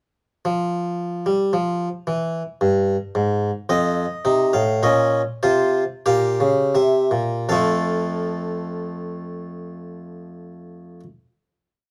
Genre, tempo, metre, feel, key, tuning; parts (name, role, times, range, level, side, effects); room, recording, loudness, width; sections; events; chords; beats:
classical, baroque-style 3-part fugue for harpsichord; 77-112 BPM; 3/4; straight; A4 = 440 Hz
harpsichord; solo; 0.5-11.0 s; F2 to F5; -22 LUFS; equal
light reverb; dark, warm production; -21 LUFS; mono
0.5-7.5 exposition; 7.5-11.9 final chord
slowing down 2.9-7.5
0.5 N.C.; 3.7 F7; 4.8 Bbm; 5.4 C7sus4; 6.7 C7; 7.5 F
| 0.46 1.00 1.54 | 2.08 2.62 3.16 | 3.70 4.25 4.83 | 5.42 6.06 6.74 | 7.49 8.26 9.04 | 9.81 10.59